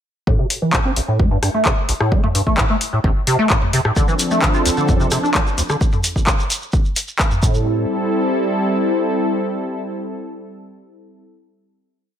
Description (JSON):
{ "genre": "acid house", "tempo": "130 BPM", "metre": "4/4", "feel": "straight", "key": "A minor", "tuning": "A4 = 440 Hz", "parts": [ { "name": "liquid acid bass", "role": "riff", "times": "0.3-7.9 s", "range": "A1 to F4", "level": "-19 LUFS", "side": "equal", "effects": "lush chorus, cassette tape, ping-pong delay" }, { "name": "electronic kick drum", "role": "drums", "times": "0.3-7.5 s", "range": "none", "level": "-18 LUFS", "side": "equal", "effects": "none" }, { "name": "booming analog drum machine", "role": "drums", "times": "0.5-7.4 s", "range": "handclaps, hi-hat, rim click, toms", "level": "-20 LUFS", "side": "left 1 dB", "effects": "none" }, { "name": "warm analog pad", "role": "sustained chords", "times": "4.0-11.2 s", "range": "F3 to A4", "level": "-20 LUFS", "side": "equal", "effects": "wide subtle chorus, sidechain pumping" }, { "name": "shekere", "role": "percussion", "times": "4.0-7.6 s", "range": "none", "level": "-26 LUFS", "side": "right 2 dB", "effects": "none" } ], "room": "light reverb", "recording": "none", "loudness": "-15 LUFS", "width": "side -9 dB against mid", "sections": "0.3-7.7 groove; 7.7-11.3 final hit", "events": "none", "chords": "0.3 N.C.; 4.0 Dm7; 7.4 Am7" }